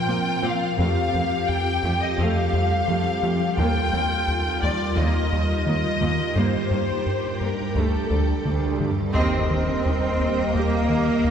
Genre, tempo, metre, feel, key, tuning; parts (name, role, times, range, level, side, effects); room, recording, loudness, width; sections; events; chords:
cinematic; 86 BPM; 4/4; straight; A4 = 442 Hz
rich symphonic violin section; melody; 0.0-8.8 s; A4 to G5; -26 LUFS; left 3 dB
rich studio viola section; accompaniment; 0.0-11.3 s; A3 to Bb4; -30 LUFS; right 3 dB
soft additive organ-like pad; sustained chords; 0.0-11.3 s; F3 to Bb4; -28 LUFS; equal; ensemble chorus, built-in reverb
rubbery square bass; riff; 0.1-11.3 s; D2 to Bb3; -25 LUFS; left 1 dB
rich symphonic cello section; bass; 0.1-11.3 s; D2 to C4; -27 LUFS; right 2 dB
warm symphonic violin section; second line; 9.1-11.3 s; Eb5; -29 LUFS; left 1 dB
rich symphonic double bass section; bass; 9.2-11.3 s; Eb2; -31 LUFS; right 2 dB
impact; sound effects; 9.2-11.3 s; -35 LUFS; equal
wet concert hall reverb, RT60 2.1 s; heard from further back in the room; -20 LUFS; side -8 dB against mid
0.0-9.2 A section; 9.2-11.3 B section
band accent 9.2-9.9; impact 9.2-11.3
0.0 Bbsus2; 0.8 Fadd9; 3.6 Ebadd9; 6.4 Gm; 7.8 Dsus4; 9.2 Eb